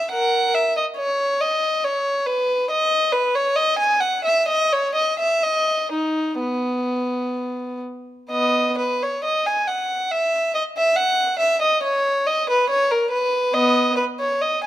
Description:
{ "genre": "classical, baroque-style suite movement for unaccompanied violin", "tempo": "62-71 BPM", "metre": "3/4", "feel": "rubato", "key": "B major", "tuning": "A4 = 441 Hz", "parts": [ { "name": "warm violin", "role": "solo", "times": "0.0-14.7 s", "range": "B3 to G#5", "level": "-18 LUFS", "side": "equal", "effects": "none" } ], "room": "moderate recital hall reverb, RT60 1.3 s", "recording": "close, detailed microphones", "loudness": "-18 LUFS", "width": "side -13 dB against mid", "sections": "0.0-14.7 A section", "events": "none", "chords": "none" }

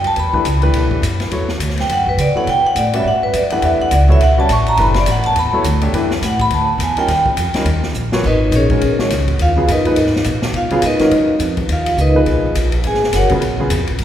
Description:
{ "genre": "modal jazz", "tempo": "208 BPM", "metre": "4/4", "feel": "swing 59% on 8ths", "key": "E dorian, G# dorian from 8.2 s", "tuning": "A4 = 441 Hz", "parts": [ { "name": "vibraphone with medium hard mallets", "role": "melody", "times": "0.0-13.3 s", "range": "C#4 to C#6", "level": "-16 LUFS", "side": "equal", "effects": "none" }, { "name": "upright bass", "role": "bass", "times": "0.0-14.0 s", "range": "F#1 to C#3", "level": "-17 LUFS", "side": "equal", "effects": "none" }, { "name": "open jazz drum kit", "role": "drums", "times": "0.0-14.0 s", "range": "crash cymbal, hi-hat, kick drum, ride cymbal, snare drum", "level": "-24 LUFS", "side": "left 2 dB", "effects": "none" }, { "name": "warm concert grand piano", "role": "accompaniment", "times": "0.3-13.7 s", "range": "A#2 to E5", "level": "-21 LUFS", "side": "left 1 dB", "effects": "none" } ], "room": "wet church reverb, RT60 2.6 s", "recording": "recorded in a church or concert hall", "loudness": "-13 LUFS", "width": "side -10 dB against mid", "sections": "0.0-8.2 A section; 8.2-14.0 A section", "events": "vibraphone solo 0.0-8.2, 8.2-14.0; drum fill 8.0", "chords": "0.0 Em9; 3.6 Dadd9; 7.1 D#7(no3); 8.2 G#m11; 12.8 F#" }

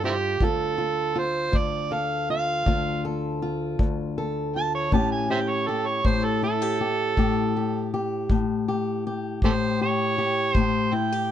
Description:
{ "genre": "acoustic country blues, solo or duo", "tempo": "53 BPM (dotted quarters)", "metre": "12/8", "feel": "straight", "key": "D minor", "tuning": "A4 = 439 Hz", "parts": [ { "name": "fingerpicked old ladder-braced acoustic guitar", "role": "accompaniment", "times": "0.0-11.3 s", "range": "D2 to A4", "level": "-26 LUFS", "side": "left 3 dB", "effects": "none" }, { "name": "overdriven harmonica", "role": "melody", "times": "0.1-11.3 s", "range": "C4 to A5", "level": "-25 LUFS", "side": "right 4 dB", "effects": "plate reverb" }, { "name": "kick drum", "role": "drums", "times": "0.4-10.7 s", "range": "none", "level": "-25 LUFS", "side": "equal", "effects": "none" } ], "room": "moderate studio reverb, RT60 0.5 s", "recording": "dark, warm production", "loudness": "-22 LUFS", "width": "side -10 dB against mid", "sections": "0.0-11.3 A section", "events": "none", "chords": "0.4 Dm; 4.9 A7" }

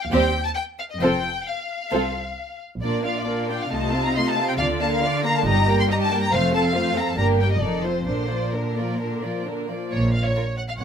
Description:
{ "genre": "quick classical-period movement for string orchestra", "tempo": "128-142 BPM", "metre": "4/4", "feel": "rubato", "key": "Bb major", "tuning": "A4 = 440 Hz", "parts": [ { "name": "warm studio violin section", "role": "melody", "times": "0.0-10.8 s", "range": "Bb4 to C6", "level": "-26 LUFS", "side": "left 3 dB", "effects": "none" }, { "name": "warm chamber violin section", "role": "second line", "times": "0.1-10.4 s", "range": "D4 to G5", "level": "-26 LUFS", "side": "right 1 dB", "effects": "none" }, { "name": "rich chamber viola section", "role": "accompaniment", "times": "0.1-10.8 s", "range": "D3 to Db5", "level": "-27 LUFS", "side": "equal", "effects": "none" }, { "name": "rich chamber cello section", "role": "bass", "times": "0.1-10.8 s", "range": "C2 to D3", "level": "-26 LUFS", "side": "equal", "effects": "none" }, { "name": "warm studio double bass section", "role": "bass", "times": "0.1-10.8 s", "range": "F1 to Eb2", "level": "-27 LUFS", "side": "right 1 dB", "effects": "none" } ], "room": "moderate studio reverb, RT60 0.7 s", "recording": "minimal, uncompressed stereo recording", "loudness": "-20 LUFS", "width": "side -8 dB against mid", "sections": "0.0-9.9 A section", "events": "none", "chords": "0.1 Cm/Eb; 1.0 F; 2.8 Bb; 3.7 F7/C; 4.6 Bb/D; 5.5 Eb/G; 6.3 F; 7.2 Gm; 7.6 F7; 8.1 Bb; 9.9 Bbm" }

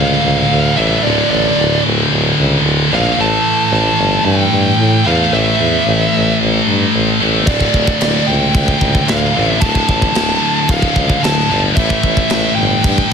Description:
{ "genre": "heavy metal", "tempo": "112 BPM", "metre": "4/4", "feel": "straight", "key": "D harmonic minor", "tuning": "A4 = 440 Hz", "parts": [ { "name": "high-gain lead guitar", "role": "melody", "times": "0.0-13.1 s", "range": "D5 to A5", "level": "-18 LUFS", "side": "right 2 dB", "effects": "distortion" }, { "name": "scooped high-gain guitar", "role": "riff", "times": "0.0-13.1 s", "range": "D2 to A3", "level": "-14 LUFS", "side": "left 1 dB", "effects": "distortion" }, { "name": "warm tuba", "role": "bass", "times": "0.0-13.0 s", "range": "D1 to A2", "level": "-18 LUFS", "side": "equal", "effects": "none" }, { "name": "tight metal drum kit", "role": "drums", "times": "7.5-13.1 s", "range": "crash cymbal, kick drum, snare drum", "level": "-17 LUFS", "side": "equal", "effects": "soft clipping on kick" } ], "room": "little or no reverb", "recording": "dense, heavily limited modern master", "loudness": "-11 LUFS", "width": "side -6 dB against mid", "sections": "0.0-13.1 A section", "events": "none", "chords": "0.0 Dm; 3.2 A5; 7.5 Dm; 11.8 A5" }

